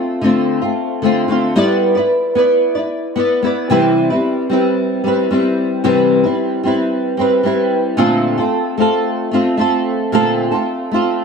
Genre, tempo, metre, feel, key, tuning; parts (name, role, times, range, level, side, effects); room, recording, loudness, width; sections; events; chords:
indie pop; 112 BPM; 4/4; straight; C major; A4 = 440 Hz
flamenco guitar; solo; 0.0-11.2 s; Bb2 to D5; -13 LUFS; equal; analog chorus, vibrato effect, slapback echo
moderate spring reverb, RT60 3.0 s; dark, warm production; -13 LUFS; side -5 dB against mid
0.0-3.7 A section; 3.7-11.2 B section
0.0 Bbmaj9 (rootless); 1.6 G6; 3.7 Cmaj7; 8.0 Bbmaj9